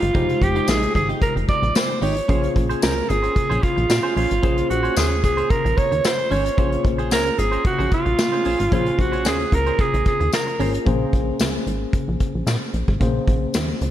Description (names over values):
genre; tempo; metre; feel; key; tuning
early-eighties boogie funk; 112 BPM; 4/4; straight; Bb minor; A4 = 440 Hz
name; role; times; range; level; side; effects
growling alto saxophone; melody; 0.0-10.7 s; F4 to D5; -22 LUFS; right 2 dB; slapback echo, tape echo
mellow tine electric piano; accompaniment; 0.0-13.9 s; Ab3 to G5; -27 LUFS; left 4 dB; medium stereo tremolo, slapback echo
clean electric guitar; riff; 0.0-10.8 s; Ab3 to C5; -29 LUFS; right 4 dB; analog chorus, slapback echo
plucky analog bass; bass; 0.0-13.9 s; F1 to Bb2; -23 LUFS; equal; none
vintage brush drum kit; drums; 0.0-13.9 s; hi-hat, kick drum, snare drum; -23 LUFS; equal; none
tambourine; percussion; 0.7-13.7 s; none; -32 LUFS; left 8 dB; none
room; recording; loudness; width
light reverb, small room ambience; none; -18 LUFS; side -12 dB against mid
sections
0.0-10.9 A section; 10.9-13.9 B section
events
none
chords
0.0 Fm9; 2.3 Bbm9